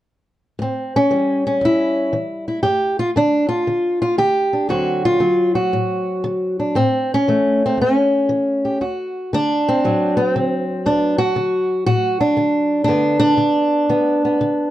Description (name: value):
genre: acoustic country blues, solo or duo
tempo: 117 BPM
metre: 4/4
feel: swing 67% on 8ths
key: D mixolydian from 8.8 s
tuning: A4 = 440 Hz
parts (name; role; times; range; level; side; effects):
- fingerpicked old ladder-braced acoustic guitar; solo; 0.6-14.7 s; D2 to G4; -16 LUFS; equal; none
room: light reverb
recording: dark, warm production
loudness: -16 LUFS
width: side -14 dB against mid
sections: 0.6-8.8 A section; 8.8-14.7 B section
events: none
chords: 0.6 A7; 2.7 G5; 4.7 D7; 6.8 A; 8.8 D7; 12.9 G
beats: | 0.61 1.12 1.64 2.15 | 2.66 3.17 3.69 4.20 | 4.71 5.22 5.74 6.25 | 6.76 7.27 7.78 8.29 | 8.80 9.31 9.82 10.34 | 10.84 11.35 11.86 12.37 | 12.88 13.39 13.90 14.41